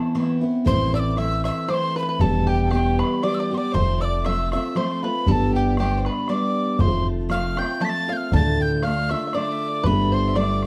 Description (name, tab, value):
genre	celtic folk, Celtic waltz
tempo	118 BPM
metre	3/4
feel	swing 53% on 8ths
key	A minor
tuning	A4 = 440 Hz
part	mellow wooden whistle	melody	0.0-10.6 s	G5 to B6	-28 LUFS	equal	none
part	bluegrass banjo	second line	0.0-10.7 s	G4 to A5	-34 LUFS	equal	none
part	clear fiddle	second line	0.0-10.7 s	G4 to A5	-38 LUFS	equal	none
part	picked steel-string acoustic guitar	accompaniment	0.0-10.7 s	D2 to G4	-26 LUFS	equal	none
part	bodhran	percussion	0.2-10.7 s	none	-30 LUFS	equal	none
part	upright bass	bass	0.7-10.7 s	E1 to D2	-26 LUFS	equal	none
room	moderate studio reverb, RT60 0.7 s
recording	dark, warm production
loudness	-22 LUFS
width	mono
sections	0.7-10.7 A section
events	none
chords	0.0 Amadd9; 0.7 Am; 2.2 Em; 3.7 F; 5.3 G; 6.8 F; 8.3 Dm; 9.8 Gadd9